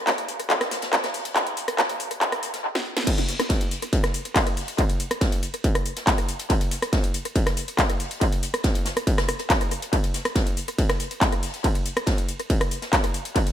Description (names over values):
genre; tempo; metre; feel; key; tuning
techno; 140 BPM; 4/4; straight; none; none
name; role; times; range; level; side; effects
electronic kick drum; drums; 0.1-13.4 s; none; -23 LUFS; equal; distortion, high-pass filter on kick, studio reverb
open jazz drum kit; drums; 0.1-13.5 s; hi-hat, snare drum; -35 LUFS; left 2 dB; high-pass filter on hats, studio reverb, high-pass filter on snare, high-pass filter on room
techno drum kit; drums; 0.1-13.5 s; crash cymbal, handclaps, hi-hat, ride cymbal, rim click, snare drum; -25 LUFS; equal; studio reverb, analog delay
room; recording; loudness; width
light reverb, small room ambience; echo-heavy mix, high-pass filter; -22 LUFS; side -10 dB against mid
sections
0.0-3.1 A section; 3.1-13.5 B section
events
build-up 0.0-3.1; drum fill 2.7-3.1; drop 3.1-13.5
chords
none